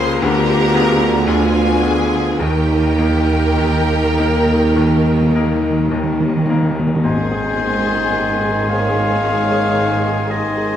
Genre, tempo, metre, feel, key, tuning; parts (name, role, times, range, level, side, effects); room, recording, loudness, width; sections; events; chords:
classical, romantic movement for piano and orchestra; 50-59 BPM; 4/4; rubato; Ab major; A4 = 443 Hz
bright baby grand piano; melody; 0.0-10.8 s; Db2 to C5; -20 LUFS; left 3 dB
rich studio violin section; melody; 0.0-10.8 s; G5 to C6; -27 LUFS; left 2 dB
rich studio violin section; second line; 0.0-10.8 s; G4 to Db5; -26 LUFS; left 2 dB
rich studio viola section; accompaniment; 0.0-10.8 s; Eb3 to Bb4; -23 LUFS; right 1 dB
mellow French horn section; sustained chords; 0.0-10.8 s; Ab3 to F4; -24 LUFS; left 1 dB
mellow tuba; bass; 0.0-6.8 s; D2 to Eb2; -22 LUFS; right 4 dB
rich studio cello section; bass; 0.0-10.8 s; Ab2 to Eb3; -24 LUFS; right 3 dB
rich studio double bass section; bass; 0.0-10.8 s; Ab1 to Eb2; -22 LUFS; right 3 dB
cymbal swell and tam-tam; percussion; 2.4-10.8 s; -29 LUFS; left 1 dB
timpani; percussion; 2.4-7.0 s; Eb3; -22 LUFS; equal
silver concert flute; second line; 7.0-10.8 s; C6; -26 LUFS; left 4 dB
warm clarinet; second line; 7.0-10.8 s; C5 to F5; -21 LUFS; left 2 dB
warm oboe; second line; 7.0-10.8 s; Ab5; -26 LUFS; equal
warm bassoon; accompaniment; 7.0-10.8 s; Eb3; -26 LUFS; right 1 dB
light reverb; close, detailed microphones; -14 LUFS; side -10 dB against mid
0.0-7.0 A section; 7.0-10.8 B section
timpani fill 2.4-7.0; band accent 7.0-8.1
0.2 Ddim7; 2.4 Eb; 7.0 Ab